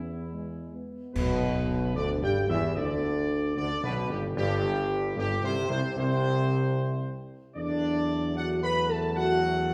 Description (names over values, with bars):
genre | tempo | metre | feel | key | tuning
classical, ceremonial fanfare | 75 BPM | 4/4 | straight | unclear | A4 = 441 Hz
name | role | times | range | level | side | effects
warm trumpet section | melody | 0.0-9.7 s | E4 to B5 | -35 LUFS | equal | none
warm trombone section | sustained chords | 0.0-9.7 s | E2 to A3 | -36 LUFS | equal | none
warm tuba | bass | 0.0-9.7 s | G1 to G2 | -32 LUFS | equal | none
dark French horn section | sustained chords | 0.1-9.7 s | G3 to B4 | -35 LUFS | equal | none
clash cymbals and concert bass drum | percussion | 1.2-2.7 s | none | -38 LUFS | equal | none
room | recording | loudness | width
wet recital hall reverb, RT60 1.4 s | heard from further back in the room | -28 LUFS | mono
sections
0.0-1.1 A section; 1.1-9.7 B section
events
band accent 1.1-2.0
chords
0.0 E; 1.1 G/B; 4.4 C5/G; 7.6 D/E